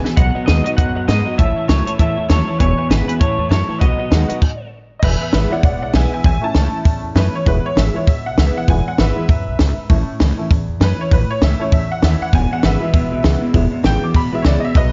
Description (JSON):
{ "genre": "rockabilly", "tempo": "198 BPM", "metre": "4/4", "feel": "swing 59% on 8ths", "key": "E major", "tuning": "A4 = 440 Hz", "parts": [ { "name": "honky-tonk upright piano", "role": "accompaniment", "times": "0.0-14.9 s", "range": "G#3 to D6", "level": "-26 LUFS", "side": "equal", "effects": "none" }, { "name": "picked steel-string acoustic guitar", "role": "accompaniment", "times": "0.0-14.9 s", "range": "E2 to F#4", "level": "-27 LUFS", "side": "equal", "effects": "none" }, { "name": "electric guitar through a small old amp", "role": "riff", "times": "0.0-4.4, 12.3-14.9 s", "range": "E2 to G#3", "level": "-25 LUFS", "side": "equal", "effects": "none" }, { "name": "upright bass", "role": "bass", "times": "0.0-14.9 s", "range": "E1 to G#2", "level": "-20 LUFS", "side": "equal", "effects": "none" }, { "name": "compact cocktail drum kit", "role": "drums", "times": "0.0-14.8 s", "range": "crash cymbal, hi-hat, kick drum, snare drum", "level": "-19 LUFS", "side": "equal", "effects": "none" }, { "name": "electric guitar through a small old amp", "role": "melody", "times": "0.2-4.7 s", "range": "B4 to F#5", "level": "-25 LUFS", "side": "equal", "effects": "analog chorus, tape echo" } ], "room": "light reverb, small room reverb", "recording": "nothing above 7.5 kHz, faint mains hum", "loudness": "-16 LUFS", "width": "mono", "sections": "0.0-5.0 A section; 5.0-14.9 B section", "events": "drum fill 0.0; stop 4.4-5.0; honky-tonk piano solo 5.0-14.9", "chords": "0.2 B; 1.4 A; 2.6 E; 3.2 A; 3.8 B; 5.0 E; 6.2 A; 7.5 E; 9.9 A; 12.3 E" }